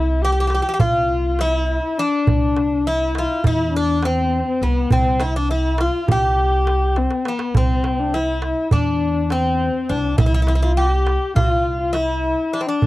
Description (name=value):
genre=Turkish makam ensemble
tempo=204 BPM (eighths)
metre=9/8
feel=straight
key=C makam rast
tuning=A4 = 435 Hz
part: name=Greek bouzouki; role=melody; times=0.0-12.9 s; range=B3 to G4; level=-22 LUFS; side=right 1 dB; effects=none
part: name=dark kamancheh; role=second line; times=0.0-12.9 s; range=B3-21c to G4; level=-22 LUFS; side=left 4 dB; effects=none
part: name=upright bass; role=bass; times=0.0-12.9 s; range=C2 to E2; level=-21 LUFS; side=right 1 dB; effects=none
part: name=darbuka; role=percussion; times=0.1-12.9 s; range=none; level=-20 LUFS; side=right 2 dB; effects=none
room=little or no reverb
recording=dry, close 1970s-style studio recording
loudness=-16 LUFS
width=side -17 dB against mid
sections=0.0-12.9 A section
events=drum fill 7.0-7.6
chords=none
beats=0.20 0.50 0.79 1.09 1.38 1.68 1.97 | 2.26 2.56 2.85 3.15 3.44 3.73 4.03 4.32 4.62 | 4.91 5.20 5.50 5.79 6.08 6.38 6.67 6.96 7.26 | 7.55 7.84 8.14 8.43 8.72 9.02 9.31 9.61 9.90 | 10.19 10.49 10.78 11.07 11.37 11.66 11.95 12.24 12.54 | 12.83